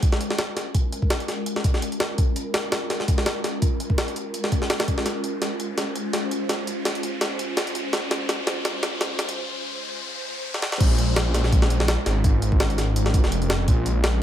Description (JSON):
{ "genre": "drum and bass, jungle", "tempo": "167 BPM", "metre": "4/4", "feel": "swing 55% on 16ths", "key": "Bb minor", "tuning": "A4 = 440 Hz", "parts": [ { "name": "jungle sampler-style drum kit", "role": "drums", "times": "0.0-14.1 s", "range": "crash cymbal, hi-hat, kick drum, snare drum", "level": "-22 LUFS", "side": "equal", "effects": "none" }, { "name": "riser and downlifter", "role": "sound effects", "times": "2.3-13.7 s", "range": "none", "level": "-35 LUFS", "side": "left 2 dB", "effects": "none" }, { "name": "detuned saw bass", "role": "bass", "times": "10.8-14.2 s", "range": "F1 to Bb1", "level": "-22 LUFS", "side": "equal", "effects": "none" } ], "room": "digital ambience", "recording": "high-pass filter", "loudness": "-21 LUFS", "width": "side -11 dB against mid", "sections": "0.0-10.8 A section; 10.8-14.2 B section", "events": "build-up 0.0-10.8; filter sweep 0.0-10.8; riser 2.3-10.8; drum fill 5.1-9.4, 10.5; break 9.4-10.8; drop 10.8-14.2", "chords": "none" }